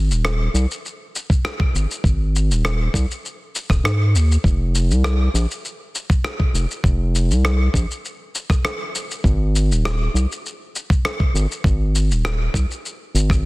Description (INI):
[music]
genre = organic downtempo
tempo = 100 BPM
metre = 4/4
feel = straight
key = unclear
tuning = A4 = 438 Hz
[part]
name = round analog bass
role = bass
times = 0.0-13.5 s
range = Eb1 to Ab2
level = -17 LUFS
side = equal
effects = none
[part]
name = electronic shaker and rim click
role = drums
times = 0.1-13.4 s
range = none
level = -26 LUFS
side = left 1 dB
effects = soft clipping on snare
[part]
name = electronic kick drum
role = drums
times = 1.3-13.4 s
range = none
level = -18 LUFS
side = equal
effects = none
[sound]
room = digital ambience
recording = dense, heavily limited modern master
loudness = -17 LUFS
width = side -22 dB against mid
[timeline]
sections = 0.0-13.5 A section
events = none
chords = none